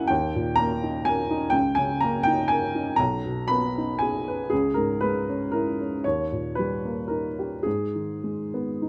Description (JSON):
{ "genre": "classical, romantic nocturne for solo piano", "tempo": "35-42 BPM (dotted quarters)", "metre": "6/8", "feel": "rubato", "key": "G# minor", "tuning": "A4 = 441 Hz", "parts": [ { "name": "warm upright piano", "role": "solo", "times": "0.0-8.9 s", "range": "B1 to B5", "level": "-26 LUFS", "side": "equal", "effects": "none" } ], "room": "light reverb", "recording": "close, detailed microphones", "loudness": "-26 LUFS", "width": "mono", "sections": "0.0-8.9 A section", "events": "none", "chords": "0.1 D#5; 1.5 D#5/C#; 3.0 G#m/B; 4.5 C#m6; 6.0 D#; 7.7 G#m" }